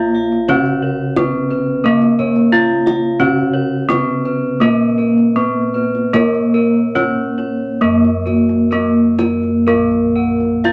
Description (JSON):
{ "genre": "Javanese gamelan", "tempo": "62-88 BPM", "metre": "4/4", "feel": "straight", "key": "Bb pelog", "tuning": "A4 = 440 Hz", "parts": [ { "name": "gamelan-type bronze metallophone", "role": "melody", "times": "0.0-10.7 s", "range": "Bb3 to F4-30c", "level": "-18 LUFS", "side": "equal", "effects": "none" }, { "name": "gamelan-type bronze metallophone", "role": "accompaniment", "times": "0.0-9.7 s", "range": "Db3-30c to Bb3", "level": "-21 LUFS", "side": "equal", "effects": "none" }, { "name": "gamelan-type bossed gongs", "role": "arpeggios", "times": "0.0-10.7 s", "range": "Gb4-20c to Gb5-20c", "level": "-30 LUFS", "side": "equal", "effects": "none" }, { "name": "gamelan-type bronze metallophone", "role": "arpeggios", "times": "0.0-10.7 s", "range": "Bb4 to F5-30c", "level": "-27 LUFS", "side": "equal", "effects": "none" }, { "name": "gamelan-type bossed gongs", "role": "bass", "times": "0.0-10.7 s", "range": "Bb1 to Bb4", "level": "-24 LUFS", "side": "equal", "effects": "none" }, { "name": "kendang", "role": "percussion", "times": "0.2-10.7 s", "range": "none", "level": "-26 LUFS", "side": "equal", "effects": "none" } ], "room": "wet club reverb, RT60 0.8 s", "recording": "none", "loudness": "-15 LUFS", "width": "mono", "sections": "0.0-9.7 A section; 9.7-10.7 B section", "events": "none", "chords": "none", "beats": "| 0.49 1.17 1.85 2.53 | 3.20 3.90 4.61 5.36 | 6.15 6.96 7.82 8.72 | 9.67 10.65" }